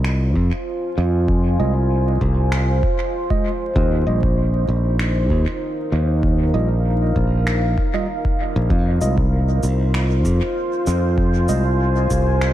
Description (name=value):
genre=ambient dub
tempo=97 BPM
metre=4/4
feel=straight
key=F minor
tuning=A4 = 440 Hz
part: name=deep dark ambient pad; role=sustained chords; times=0.0-12.5 s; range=Eb4 to Ab5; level=-24 LUFS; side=equal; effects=chorus, built-in reverb
part: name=modern bright fingered electric bass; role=bass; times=0.0-12.5 s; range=Bb1 to F2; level=-18 LUFS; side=equal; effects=none
part: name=electronic finger snaps and shaker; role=drums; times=0.0-12.5 s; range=none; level=-31 LUFS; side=right 1 dB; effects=dub echo
part: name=electronic kick drum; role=drums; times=0.4-12.2 s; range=none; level=-23 LUFS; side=equal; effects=overdrive
part: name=mellow tine electric piano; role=stabs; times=1.6-11.6 s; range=G3 to Eb5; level=-29 LUFS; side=right 3 dB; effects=medium stereo tremolo, dub echo
room=light reverb, digital ambience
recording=vinyl crackle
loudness=-16 LUFS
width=side -13 dB against mid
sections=0.0-12.5 A section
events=none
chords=0.0 Fm; 3.8 Ebsus2; 8.7 Fm7